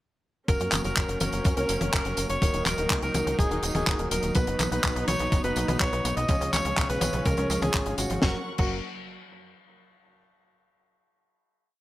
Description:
italo disco; 124 BPM; 4/4; straight; F# major; A4 = 440 Hz
warm alto saxophone; melody; 0.5-8.8 s; F#4 to D#5; -30 LUFS; equal; digital delay
warm symphonic string section; sustained chords; 0.5-8.4 s; E#3 to C#6; -35 LUFS; right 2 dB
warm concert grand piano; stabs; 0.5-8.8 s; B2 to C#5; -34 LUFS; left 2 dB
tight sequencer bass; bass; 0.5-8.8 s; D#1 to F#2; -31 LUFS; equal; tube saturation
electronic kick drum; drums; 0.5-8.7 s; -26 LUFS; equal; overdrive
tight funk drum kit; drums; 0.5-8.7 s; crash cymbal, handclaps, hi-hat, snare drum, tambourine, toms; -29 LUFS; equal
wide unison pluck; arpeggios; 4.4-8.8 s; C#2 to B3; -38 LUFS; right 2 dB
light reverb, small room reverb; -23 LUFS; side -16 dB against mid
0.5-8.2 verse; 8.2-10.2 final chord
0.5 F#; 2.4 D#m; 4.4 B; 6.3 C#; 8.2 F#
| 0.48 0.97 1.45 1.93 | 2.42 2.90 3.39 3.87 | 4.35 4.84 5.32 5.80 | 6.29 6.77 7.26 7.74 | 8.22 8.71

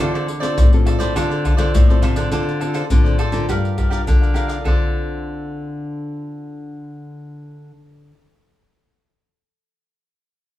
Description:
samba and choro; 103 BPM; 4/4; straight; D minor; A4 = 440 Hz
cavaquinho; accompaniment; 0.0-8.2 s; F4 to F5; -26 LUFS; right 2 dB
nylon-string guitar; accompaniment; 0.0-8.3 s; A2 to Bb4; -26 LUFS; left 2 dB
nylon-string guitar; bass; 0.0-7.7 s; G2 to D3; -25 LUFS; left 1 dB
maracas, surdo, pandeiro and tamborim; percussion; 0.0-4.8 s; -16 LUFS; left 1 dB
wet small room reverb, RT60 0.5 s; heard from further back in the room, studio reverb; -16 LUFS; side -14 dB against mid
0.0-2.3 A section; 2.3-4.7 B section; 4.7-7.0 C section
0.0 Dm7; 3.5 Gm7; 4.7 Dm7
| 0.00 0.58 1.16 1.74 | 2.32 2.90 3.49 4.07 | 4.65 5.24 5.82 6.40

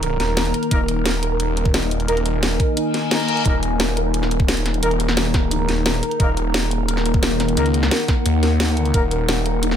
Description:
dark technical drum and bass; 175 BPM; 4/4; straight; Eb minor; A4 = 440 Hz
deep dark ambient pad; sustained chords; 0.0-9.8 s; Eb3 to Eb5; -25 LUFS; left 3 dB; chorus, built-in reverb, sidechain pumping
soft round pluck; arpeggios; 0.0-9.7 s; Eb4 to Bb4; -27 LUFS; right 3 dB; ensemble chorus, sidechain pumping, dub echo
snarling distorted saw bass; bass; 0.0-9.8 s; Eb1 to Eb2; -21 LUFS; equal; distortion, tube saturation, sidechain pumping
drum and bass drum kit; drums; 0.0-9.8 s; hi-hat, snare drum; -23 LUFS; equal
warbly tape-like pad; texture; 0.0-9.8 s; Eb4 to Bb5; -27 LUFS; left 1 dB; chorus, built-in reverb, sidechain pumping
dark brass ensemble; stabs; 0.7-9.0 s; Bb3 to Bb4; -29 LUFS; left 3 dB; dub echo
electronic kick drum; drums; 0.7-9.0 s; -19 LUFS; equal; overdrive
reverse cymbal; sound effects; 2.9-3.5 s; -27 LUFS; left 4 dB
light reverb, digital ambience; -17 LUFS; side -9 dB against mid
0.0-9.8 A section
reverse cymbal 2.9-3.5
0.0 Eb5
0.03 0.37 | 0.71 1.05 1.40 1.74 | 2.08 2.43 2.77 3.11 | 3.46 3.80 4.14 4.48 | 4.83 5.17 5.51 5.86 | 6.20 6.54 6.88 7.23 | 7.57 7.91 8.26 8.60 | 8.94 9.28 9.63

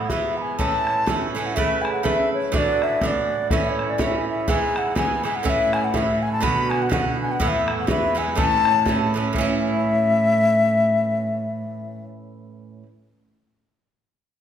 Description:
celtic folk, Celtic polka; 123 BPM; 2/4; swing 58% on 8ths; A major; A4 = 440 Hz
wooden flute; melody; 0.0-12.0 s; C#5 to B5; -22 LUFS; left 3 dB
Irish bouzouki; accompaniment; 0.0-12.9 s; G#2 to B4; -25 LUFS; right 5 dB
bodhran; percussion; 0.1-9.6 s; -27 LUFS; left 1 dB
dark cello; bass; 5.5-12.0 s; E2 to B2; -26 LUFS; equal
wet recital hall reverb, RT60 1.4 s; recorded in a church or concert hall; -19 LUFS; side -9 dB against mid
0.0-1.6 A section; 1.6-9.3 A section; 9.3-11.3 B section
0.1 E; 0.6 A; 1.6 Aadd9; 2.5 Dadd9; 3.5 A; 4.5 E; 5.5 A; 6.4 Bm; 7.4 Esus4; 7.9 E; 8.4 A
0.10 | 0.58 1.07 | 1.56 2.04 | 2.53 3.02 | 3.50 3.99 | 4.48 4.96 | 5.45 5.94 | 6.42 6.91 | 7.40 7.88 | 8.37 8.86 | 9.34 9.83 | 10.31 10.80

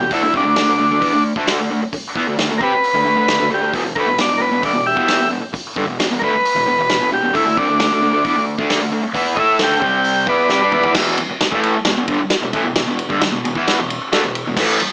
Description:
garage rock duo or trio; 133 BPM; 4/4; straight; E minor; A4 = 440 Hz
combo organ; melody; 0.0-10.9 s; D4 to G5; -18 LUFS; equal; plate reverb
fuzz guitar; riff; 0.0-14.8 s; E2 to A4; -21 LUFS; equal; distortion
vintage drum kit; drums; 0.1-14.9 s; crash cymbal, hi-hat, kick drum, ride cymbal, snare drum, toms; -24 LUFS; equal
moderate club reverb, RT60 0.8 s; small speaker sound; -17 LUFS; mono
0.0-11.0 A section; 11.0-14.9 B section
drum fill 10.5-11.0
0.1 D5; 3.7 E5; 7.3 D5; 9.8 C5; 10.3 Cmaj9; 11.0 E5
| 0.11 0.57 1.02 1.48 | 1.93 2.38 2.83 3.29 | 3.74 4.19 4.64 5.09 | 5.54 6.00 6.45 6.90 | 7.35 7.80 8.25 8.70 | 9.15 9.61 10.06 10.51 | 10.96 11.41 11.86 12.31 | 12.76 13.21 13.66 14.12 | 14.57

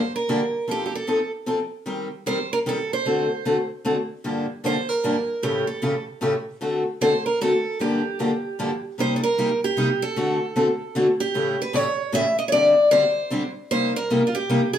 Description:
jazz; 152 BPM; 3/4; swing 61% on 8ths; G minor; A4 = 441 Hz
picked steel-string acoustic guitar; melody; 0.0-14.8 s; F4 to E5; -22 LUFS; right 1 dB; plate reverb
picked steel-string acoustic guitar; accompaniment; 0.3-14.6 s; G2 to Bb4; -23 LUFS; left 1 dB
wet small room reverb, RT60 0.6 s; heard from further back in the room; -20 LUFS; side -10 dB against mid
0.0-9.0 A section; 9.0-14.8 B section
0.0 Gm7; 0.7 F7; 1.9 Cm7/Eb; 3.0 D7; 4.2 Gm7; 5.4 A7; 6.6 D7; 7.8 Gm7; 9.0 Cm7; 10.2 D7; 11.3 A7; 12.5 D7sus4; 13.7 Cm7
0.28 | 0.68 1.07 1.47 | 1.86 2.26 2.65 | 3.05 3.44 3.84 | 4.24 4.63 5.03 | 5.42 5.82 6.21 | 6.61 7.00 7.40 | 7.79 8.19 8.58 | 8.98 9.37 9.76 | 10.16 10.55 10.94 | 11.34 11.73 12.12 | 12.52 12.91 13.30 | 13.70 14.09 14.48

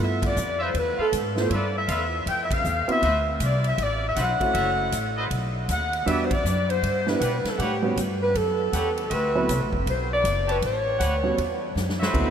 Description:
jazz, big band swing; 158 BPM; 4/4; swing 64% on 8ths; D mixolydian; A4 = 435 Hz
warm saxophone section; melody; 0.0-11.7 s; G4 to G5; -25 LUFS; left 1 dB
warm grand piano; accompaniment; 0.0-12.3 s; F#3 to A4; -30 LUFS; right 3 dB
upright bass; bass; 0.0-12.3 s; F#1 to B2; -27 LUFS; equal
swinging big-band drum kit; drums; 0.2-12.3 s; crash cymbal, hi-hat, kick drum, ride cymbal, snare drum; -32 LUFS; equal
clear trumpet section; stabs; 0.6-12.3 s; C4 to A5; -32 LUFS; right 1 dB
bright trombone section; sustained chords; 12.1-12.3 s; B2 to E4; -30 LUFS; equal
wet cathedral reverb, RT60 7.4 s; in a vast, echoing space; -22 LUFS; side -8 dB against mid
0.0-12.1 A section
band accent 0.2, 2.5, 6.3; drum fill 11.8-12.1
0.0 G13; 3.0 D13; 4.5 F#m7; 5.3 B; 6.1 Em7; 7.6 A13; 9.1 D13; 10.6 A13
0.36 0.74 1.12 | 1.50 1.88 2.26 2.64 | 3.02 3.40 3.79 4.17 | 4.55 4.93 5.31 5.69 | 6.07 6.45 6.83 7.21 | 7.59 7.96 8.35 8.72 | 9.10 9.48 9.86 10.24 | 10.62 11.00 11.38 11.76 | 12.14

